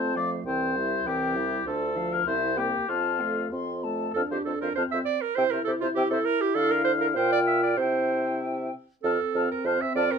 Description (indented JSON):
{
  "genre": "quick classical-period movement for wind quintet",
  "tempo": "94-102 BPM",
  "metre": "2/4",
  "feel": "rubato",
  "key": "F major",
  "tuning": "A4 = 440 Hz",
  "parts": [
    { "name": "silver concert flute", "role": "melody", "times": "0.0-10.0 s", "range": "C5 to C6", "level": "-33 LUFS", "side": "left 6 dB", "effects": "none" },
    { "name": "warm oboe", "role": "second line", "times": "0.0-10.1 s", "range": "F4 to F5", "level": "-29 LUFS", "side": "left 6 dB", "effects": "none" },
    { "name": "clear clarinet", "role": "accompaniment", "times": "0.0-10.2 s", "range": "A3 to E5", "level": "-28 LUFS", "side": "right 7 dB", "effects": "none" },
    { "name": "warm French horn", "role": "accompaniment", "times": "0.0-10.2 s", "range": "D3 to F4", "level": "-32 LUFS", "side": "left 2 dB", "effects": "none" },
    { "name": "warm bassoon", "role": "bass", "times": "0.0-10.1 s", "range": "C2 to D3", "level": "-30 LUFS", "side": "right 2 dB", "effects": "none" }
  ],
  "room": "moderate studio reverb, RT60 0.5 s",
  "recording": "minimal, uncompressed stereo recording",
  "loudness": "-24 LUFS",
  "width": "side -6 dB against mid",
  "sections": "0.0-4.2 A section; 4.2-10.2 B section",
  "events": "none",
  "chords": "0.5 C; 1.7 Dm; 2.3 C7; 2.9 F; 5.4 C; 6.6 Dm; 7.2 Gm7/Bb; 7.8 C; 9.0 F"
}